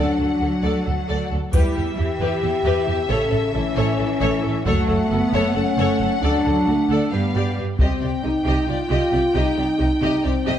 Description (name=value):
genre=cinematic, epic orchestral film score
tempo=269 BPM (eighths)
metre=7/8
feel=straight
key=unclear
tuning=A4 = 440 Hz
part: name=rich symphonic violin section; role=melody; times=0.0-10.6 s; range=E5 to G5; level=-30 LUFS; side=left 3 dB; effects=none
part: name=rich symphonic violin section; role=second line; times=0.0-10.6 s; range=E4 to Eb5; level=-29 LUFS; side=left 4 dB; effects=none
part: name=rich symphonic viola section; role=accompaniment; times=0.0-10.6 s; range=G4 to A4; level=-29 LUFS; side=equal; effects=none
part: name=warm French horn section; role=sustained chords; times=0.0-10.6 s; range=A3 to A4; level=-22 LUFS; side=left 2 dB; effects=none
part: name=rich symphonic cello section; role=bass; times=0.0-10.5 s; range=C3 to B3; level=-27 LUFS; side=right 3 dB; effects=none
part: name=rich symphonic double bass section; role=bass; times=0.0-10.6 s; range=F#1 to G2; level=-24 LUFS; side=right 2 dB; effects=none
part: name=taiko ensemble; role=drums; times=1.5-8.6 s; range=none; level=-21 LUFS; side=equal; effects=none
part: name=triangle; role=percussion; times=1.5-2.4 s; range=none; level=-43 LUFS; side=left 3 dB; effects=none
room=moderate scoring stage reverb, RT60 1.5 s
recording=dark, warm production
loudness=-18 LUFS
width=side -10 dB against mid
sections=0.0-7.8 A section; 7.8-10.6 B section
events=none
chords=0.0 D; 1.5 Em; 3.1 A; 4.7 F#m; 6.2 D; 7.1 G7; 7.8 Cm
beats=0.19 0.41 0.64 0.86 1.09 1.31 | 1.53 1.76 1.98 2.20 2.43 2.65 2.87 | 3.10 3.32 3.54 3.77 3.99 4.21 4.44 | 4.66 4.88 5.11 5.33 5.55 5.78 6.00 | 6.22 6.45 6.67 6.89 7.12 7.34 7.57 | 7.79 8.01 8.23 8.46 8.68 8.90 9.13 | 9.35 9.57 9.80 10.02 10.24 10.47